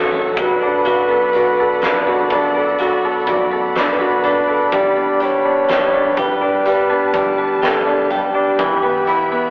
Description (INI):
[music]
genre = pop ballad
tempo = 62 BPM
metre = 4/4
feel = straight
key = D major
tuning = A4 = 437 Hz
[part]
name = breathy flugelhorn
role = melody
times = 0.0-9.5 s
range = G4 to D5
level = -18 LUFS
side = equal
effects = none
[part]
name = clear concert grand piano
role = accompaniment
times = 0.0-9.5 s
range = E3 to A4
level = -17 LUFS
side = equal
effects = none
[part]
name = rich studio string section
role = sustained chords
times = 0.0-9.5 s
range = D4 to C#6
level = -24 LUFS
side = equal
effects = none
[part]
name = twelve-string electric guitar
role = arpeggios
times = 0.0-9.5 s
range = F#2 to A4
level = -26 LUFS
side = equal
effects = none
[part]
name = woody fretless electric bass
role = bass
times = 0.0-9.5 s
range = E1 to B1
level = -36 LUFS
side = equal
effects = none
[part]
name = huge arena drum kit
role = drums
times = 0.4-9.3 s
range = hi-hat, kick drum, snare drum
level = -23 LUFS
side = equal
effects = none
[sound]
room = moderate studio reverb, RT60 0.6 s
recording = rough rehearsal-room recording, tube saturation, telephone sound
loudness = -13 LUFS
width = side -30 dB against mid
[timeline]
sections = 0.0-9.5 A section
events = none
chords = 0.4 D6/F#; 4.7 G; 8.6 Em